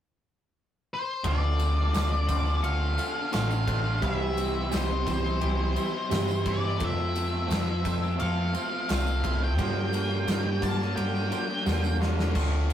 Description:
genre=rock, shoegaze and dream pop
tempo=86 BPM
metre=4/4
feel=straight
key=D minor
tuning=A4 = 442 Hz
part: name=octave-fuzz lead guitar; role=melody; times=0.9-12.0 s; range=C5 to A5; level=-32 LUFS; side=left 1 dB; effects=distortion, slapback echo
part: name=twelve-string electric guitar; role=arpeggios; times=1.2-12.7 s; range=F3 to A4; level=-40 LUFS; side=left 6 dB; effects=none
part: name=biting overdriven guitar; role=riff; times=1.2-12.7 s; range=G2 to A4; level=-34 LUFS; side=left 3 dB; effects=none
part: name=twangy electric guitar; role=riff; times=1.2-12.7 s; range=G2 to F4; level=-32 LUFS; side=right 3 dB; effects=none
part: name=picked electric bass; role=bass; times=1.2-12.7 s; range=A1 to G2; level=-28 LUFS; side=equal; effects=none
part: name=gated 80s drum kit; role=drums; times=1.2-12.7 s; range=crash cymbal, kick drum, ride cymbal, snare drum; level=-34 LUFS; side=equal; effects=none
part: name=tambourine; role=percussion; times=1.2-12.7 s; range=none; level=-46 LUFS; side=right 6 dB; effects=none
room=moderate small room reverb, RT60 0.5 s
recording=rough rehearsal-room recording, warm saturation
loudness=-25 LUFS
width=side -10 dB against mid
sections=0.0-1.2 A section; 1.2-12.7 B section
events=drum fill 11.7-12.4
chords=0.0 N.C.; 1.2 Dm7; 4.0 C; 6.8 Fmaj7; 9.6 Gm7

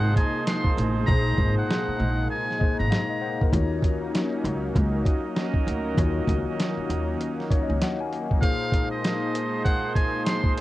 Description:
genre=hip hop, boom-bap hip-hop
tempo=98 BPM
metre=4/4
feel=swing 62% on 16ths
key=Eb dorian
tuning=A4 = 444 Hz
part: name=trumpet with metal mute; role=melody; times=0.0-3.5, 8.4-10.5 s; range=Eb5 to C6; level=-30 LUFS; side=equal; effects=high-pass filter, low-pass filter, tape echo
part: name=tine electric piano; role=accompaniment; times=0.0-10.6 s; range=Bb2 to Ab5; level=-31 LUFS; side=left 6 dB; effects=high-pass filter, low-pass filter
part: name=warm analog pad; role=sustained chords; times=0.0-10.6 s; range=Gb3 to Eb4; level=-31 LUFS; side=equal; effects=chorus, high-pass filter, low-pass filter
part: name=warm horn section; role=stabs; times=0.0-10.6 s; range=F3 to Eb5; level=-34 LUFS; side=right 7 dB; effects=high-pass filter, low-pass filter, tape echo
part: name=upright bass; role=bass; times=0.0-7.8 s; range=Ab1 to Eb2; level=-26 LUFS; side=equal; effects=none
part: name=dusty soul sampler-style drum kit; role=drums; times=0.2-10.6 s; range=hi-hat, kick drum, snare drum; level=-24 LUFS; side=equal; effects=cassette tape
room=little or no reverb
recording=home recording on cassette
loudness=-22 LUFS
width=side -16 dB against mid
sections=0.0-10.6 A section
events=hi-hats muted 1.1-3.5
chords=0.0 Bb9sus4; 3.5 Ebm7; 8.4 Bb9sus4

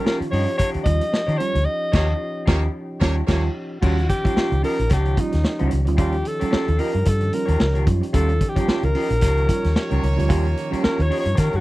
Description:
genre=funk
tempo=111 BPM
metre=4/4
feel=swing 56% on 16ths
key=Eb mixolydian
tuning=A4 = 435 Hz
part: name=breathy alto saxophone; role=melody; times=0.0-11.6 s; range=Eb4 to Eb5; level=-24 LUFS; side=left 1 dB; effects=none
part: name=electric guitar through a small old amp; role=accompaniment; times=0.0-11.6 s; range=F4 to Eb5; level=-31 LUFS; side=left 3 dB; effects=spring reverb
part: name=percussive tonewheel organ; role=sustained chords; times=0.0-11.6 s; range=F3 to G4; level=-32 LUFS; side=right 1 dB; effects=fast rotary speaker, overdrive, chorus vibrato
part: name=tine electric piano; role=stabs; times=0.0-11.6 s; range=Eb3 to F4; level=-27 LUFS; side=right 5 dB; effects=analog chorus
part: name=vintage drum kit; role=drums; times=0.1-11.6 s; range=crash cymbal, hi-hat, kick drum, snare drum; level=-22 LUFS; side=equal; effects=none
part: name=vintage muted fingered electric bass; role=bass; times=0.2-11.6 s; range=Bb1 to Eb3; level=-20 LUFS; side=equal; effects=none
part: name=clear horn section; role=second line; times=1.9-3.4, 9.2-11.6 s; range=Bb3 to Db5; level=-30 LUFS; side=right 3 dB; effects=none
room=little or no reverb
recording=dry, close 1970s-style studio recording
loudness=-18 LUFS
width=side -18 dB against mid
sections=0.0-3.8 A section; 3.8-11.6 B section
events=band accent 1.7-3.8; alto saxophone solo 3.8-11.6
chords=0.0 Eb9

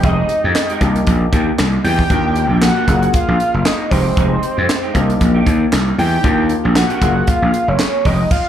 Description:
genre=early-eighties boogie funk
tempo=116 BPM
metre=4/4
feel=swing 56% on 16ths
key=unclear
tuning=A4 = 441 Hz
part: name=fat analog lead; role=melody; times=0.0-8.5 s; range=C5 to G5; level=-20 LUFS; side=right 1 dB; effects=plate reverb, slapback echo
part: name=warm grand piano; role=accompaniment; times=0.0-8.0 s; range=Ab3 to Ab4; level=-22 LUFS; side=left 4 dB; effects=plate reverb, slapback echo
part: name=semi-hollow electric guitar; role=riff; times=0.0-8.3 s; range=Ab3 to Bb4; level=-25 LUFS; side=right 7 dB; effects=ensemble chorus, slapback echo
part: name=gritty slap bass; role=bass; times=0.0-8.2 s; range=F1 to F2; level=-15 LUFS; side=equal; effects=overdrive, tube saturation
part: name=tight funk drum kit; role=drums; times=0.0-8.4 s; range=crash cymbal, handclaps, hi-hat, kick drum, snare drum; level=-18 LUFS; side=equal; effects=none
room=light reverb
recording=live gig heard through the venue's PA, club reverb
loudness=-12 LUFS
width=side -10 dB against mid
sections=0.0-8.5 A section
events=none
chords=0.0 Fm9; 0.8 Cm7; 2.1 Ebmaj7; 2.9 Gbmaj9; 3.9 Fm9; 4.9 Cm7; 6.2 Ebmaj7; 7.0 Gbmaj9

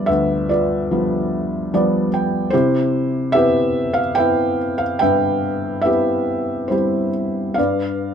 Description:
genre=classical, lyrical solo piano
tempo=72 BPM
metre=3/4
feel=uneven beats, rubato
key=C major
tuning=A4 = 442 Hz
part: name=felt-muted upright piano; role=solo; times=0.0-8.1 s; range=D2 to G5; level=-16 LUFS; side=equal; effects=none
room=light reverb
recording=dark, warm production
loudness=-16 LUFS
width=side -7 dB against mid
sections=0.0-8.1 A section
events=felt piano fill 1.3-2.5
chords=0.0 G7; 2.5 Cmaj7; 7.6 G7

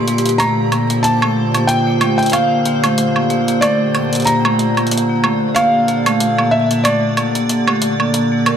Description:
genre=IDM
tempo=93 BPM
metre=4/4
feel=swing 56% on 16ths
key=unclear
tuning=A4 = 440 Hz
part: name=felt-muted upright piano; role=melody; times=0.0-8.6 s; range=D5 to C6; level=-18 LUFS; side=equal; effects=ping-pong delay
part: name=icy glass pad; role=sustained chords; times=0.0-8.6 s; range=Bb2 to D5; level=-19 LUFS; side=equal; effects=chorus, built-in reverb, vintage 12-bit sampler grit
part: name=backwards swelling texture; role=texture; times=0.0-8.6 s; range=G4 to D5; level=-28 LUFS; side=equal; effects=built-in reverb
part: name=vibraphone with medium hard mallets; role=arpeggios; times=0.1-8.5 s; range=A3 to Bb4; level=-18 LUFS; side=equal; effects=tape echo
part: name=electronic hi-hat and woodblock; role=drums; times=0.1-8.6 s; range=none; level=-20 LUFS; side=right 2 dB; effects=none
room=moderate lush hall reverb, RT60 1.6 s, studio reverb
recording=none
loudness=-13 LUFS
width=side -8 dB against mid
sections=0.0-8.6 A section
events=filter sweep on ambient pad 0.0-8.6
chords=0.0 Bbmaj9

